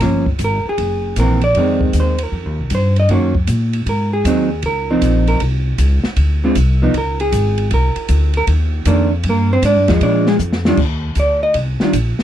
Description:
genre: jazz, small-group swing and bop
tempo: 156 BPM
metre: 4/4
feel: swing 66% on 8ths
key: C minor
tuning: A4 = 435 Hz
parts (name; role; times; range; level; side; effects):
- vintage hollow-body jazz guitar; accompaniment; 0.0-11.9 s; D3 to Eb5; -16 LUFS; right 1 dB; none
- upright bass; bass; 0.0-12.2 s; F#1 to Bb2; -16 LUFS; equal; none
- open jazz drum kit; drums; 0.0-12.2 s; crash cymbal, hi-hat, kick drum, ride cymbal, snare drum; -24 LUFS; equal; none
room: little or no reverb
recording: dry, close 1970s-style studio recording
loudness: -13 LUFS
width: side -11 dB against mid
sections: 0.0-10.8 A section; 10.8-12.2 A section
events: drum fill 10.4-10.8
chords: 0.0 Gm7b5; 0.8 F#7#11; 1.6 Fm7; 3.1 Ebm7; 3.9 Ab7; 4.6 Dbmaj9; 6.2 Dm7b5; 6.9 Db5; 7.7 Cm9; 10.0 Bb7; 10.8 Ebmaj7(no3)

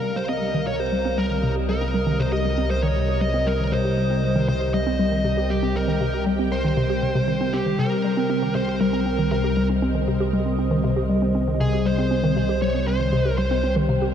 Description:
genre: ambient, sequencer-driven space music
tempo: 118 BPM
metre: 4/4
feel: straight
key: C minor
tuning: A4 = 439 Hz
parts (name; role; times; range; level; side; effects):
- smooth overdriven lead guitar; melody; 0.0-13.7 s; G4 to Eb5; -26 LUFS; right 1 dB; tape echo
- sweeping resonant pad; sustained chords; 0.0-14.1 s; C3 to G5; -25 LUFS; left 1 dB; chorus
- hollow square pluck; riff; 0.0-14.1 s; C3 to G4; -24 LUFS; equal; chorus, tape echo
- fat analog bass; bass; 0.0-14.1 s; C2; -26 LUFS; equal; none
room: wet huge ambient reverb, RT60 8.6 s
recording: dark, warm production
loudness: -20 LUFS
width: side -9 dB against mid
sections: 0.0-14.1 A section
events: filter sweep on synth arpeggio sound 0.0-14.1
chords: 0.0 Cm7

